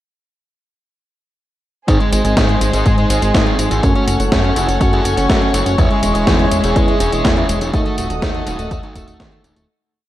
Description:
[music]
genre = italo disco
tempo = 123 BPM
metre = 4/4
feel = straight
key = unclear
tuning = A4 = 440 Hz
[part]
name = dark smooth lead guitar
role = melody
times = 1.9-9.7 s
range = F#3 to B#4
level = -20 LUFS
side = left 1 dB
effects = overdrive, tape echo
[part]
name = rich chamber string section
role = sustained chords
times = 1.9-9.7 s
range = G#4 to D#6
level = -22 LUFS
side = equal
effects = none
[part]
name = mellow synth brass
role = stabs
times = 1.9-9.7 s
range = G#2 to A4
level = -22 LUFS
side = right 2 dB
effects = chorus
[part]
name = chorused synth bass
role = bass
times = 1.9-9.7 s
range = D#1 to G#2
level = -19 LUFS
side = equal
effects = none
[part]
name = electronic kick drum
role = drums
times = 1.9-9.3 s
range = none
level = -18 LUFS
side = equal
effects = none
[part]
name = gated 80s digital drum machine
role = drums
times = 1.9-9.7 s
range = hi-hat, snare drum, tambourine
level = -20 LUFS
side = equal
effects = gated reverb, gated reverb snare, overdrive
[sound]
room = light reverb, digital ambience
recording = none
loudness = -13 LUFS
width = side -14 dB against mid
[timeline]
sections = 1.9-9.7 chorus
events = fade-out 7.1-9.7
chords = 1.9 G#; 3.8 F#m; 5.8 C#m/E; 7.7 D#dim

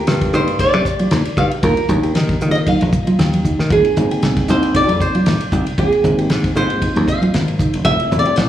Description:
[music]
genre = electric jazz fusion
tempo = 116 BPM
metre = 4/4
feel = swing 55% on 16ths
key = unclear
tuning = A4 = 440 Hz
[part]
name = flamenco guitar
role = melody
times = 0.0-8.5 s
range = Ab4 to F5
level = -19 LUFS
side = right 1 dB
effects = slapback echo, tape echo
[part]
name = overdriven reed electric piano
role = accompaniment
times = 0.0-8.5 s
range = G3 to G4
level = -23 LUFS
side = left 1 dB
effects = fast tremolo, slapback echo
[part]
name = mellow electric guitar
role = stabs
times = 0.0-8.4 s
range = Eb4 to G4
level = -27 LUFS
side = right 2 dB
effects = analog chorus, slapback echo
[part]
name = dry thumbed slap bass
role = bass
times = 0.1-8.5 s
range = E1 to Eb3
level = -18 LUFS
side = equal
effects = none
[part]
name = damped 70s drum kit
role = drums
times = 0.1-8.5 s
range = hi-hat, kick drum, ride cymbal, snare drum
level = -21 LUFS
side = equal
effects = none
[part]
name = congas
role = percussion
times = 0.1-8.5 s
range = none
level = -22 LUFS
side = right 1 dB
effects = none
[sound]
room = light reverb, studio reverb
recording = live gig heard through the venue's PA, club ambience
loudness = -13 LUFS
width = side -11 dB against mid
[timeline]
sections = 0.0-8.5 A section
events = drum fill 3.4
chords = 0.0 Ebmaj9; 3.7 Abmaj9; 7.9 Fmaj9

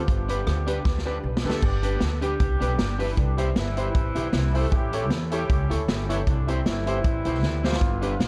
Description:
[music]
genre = ska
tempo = 155 BPM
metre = 4/4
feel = swing 55% on 8ths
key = G mixolydian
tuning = A4 = 440 Hz
[part]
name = mellow horn section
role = melody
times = 0.0-8.3 s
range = C3 to A4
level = -34 LUFS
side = equal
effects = dub echo, plate reverb
[part]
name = warm upright piano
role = stabs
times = 0.0-8.2 s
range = D4 to C#5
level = -35 LUFS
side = equal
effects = dub echo, plate reverb
[part]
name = upright bass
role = bass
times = 0.0-8.3 s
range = G1 to E2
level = -29 LUFS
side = equal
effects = none
[part]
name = vintage drum kit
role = drums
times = 0.1-8.3 s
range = crash cymbal, hi-hat, kick drum, rim click, snare drum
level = -28 LUFS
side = equal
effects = dub echo
[part]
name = electric guitar at the edge of break-up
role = accompaniment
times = 0.3-8.1 s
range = D4 to C#5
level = -36 LUFS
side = equal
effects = dub echo, plate reverb
[sound]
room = light reverb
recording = none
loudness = -24 LUFS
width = mono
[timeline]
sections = 0.0-1.6 A section; 1.6-8.3 B section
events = drum fill 0.9-1.6, 7.4-7.8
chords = 0.1 G; 3.2 C; 4.7 A; 6.3 C

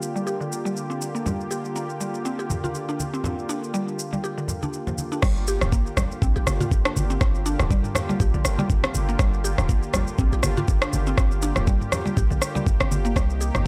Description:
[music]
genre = afro house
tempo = 121 BPM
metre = 4/4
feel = swing 56% on 16ths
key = G minor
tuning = A4 = 439 Hz
[part]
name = warm analog pad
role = sustained chords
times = 0.0-13.7 s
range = C3 to G4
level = -33 LUFS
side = equal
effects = chorus, tremolo, sidechain pumping
[part]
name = afro-pop drum kit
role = drums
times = 0.0-13.6 s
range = crash cymbal, rim click, shaker, toms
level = -30 LUFS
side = equal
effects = studio ambience
[part]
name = mallet-like synth pluck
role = arpeggios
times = 0.2-13.5 s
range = D3 to G4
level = -32 LUFS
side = equal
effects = lush chorus, sidechain pumping, analog delay
[part]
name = congas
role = percussion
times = 1.3-13.6 s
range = none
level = -32 LUFS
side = equal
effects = none
[part]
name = warm 808-style bass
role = bass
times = 5.2-13.6 s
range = D1 to C2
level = -27 LUFS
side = equal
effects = sidechain pumping
[part]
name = electronic kick drum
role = drums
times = 5.2-13.3 s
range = none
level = -24 LUFS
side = equal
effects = studio ambience
[sound]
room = digital ambience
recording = dry, gritty hardware recording, transformer saturation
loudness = -24 LUFS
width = mono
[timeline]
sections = 0.0-5.2 A section; 5.2-13.7 B section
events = drop 5.2-13.7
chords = 0.0 Gm7; 13.2 Cm7

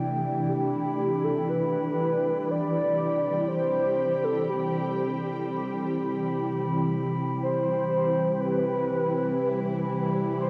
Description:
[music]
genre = ambient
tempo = 60 BPM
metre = 4/4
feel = straight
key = C major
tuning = A4 = 440 Hz
[part]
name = shimmering ambient pad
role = sustained chords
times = 0.0-10.5 s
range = C3 to G4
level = -31 LUFS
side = equal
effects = chorus, built-in reverb
[part]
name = analog drone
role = drone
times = 3.1-10.5 s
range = C3 to G3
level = -38 LUFS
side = equal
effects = chorus
[part]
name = glass harmonica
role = texture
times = 0.0-10.5 s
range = G5 to B5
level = -39 LUFS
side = equal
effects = none
[part]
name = warm velvety synth lead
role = melody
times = 0.5-10.5 s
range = G4 to D5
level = -30 LUFS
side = equal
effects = chorus, cassette tape, diffuse ambient delay
[sound]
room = wet huge ambient reverb, RT60 8.5 s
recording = worn, warbling old tape, cassette tape, warbly pitch drift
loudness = -27 LUFS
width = mono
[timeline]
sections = 0.5-10.5 A section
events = none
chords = 0.0 Cmaj9

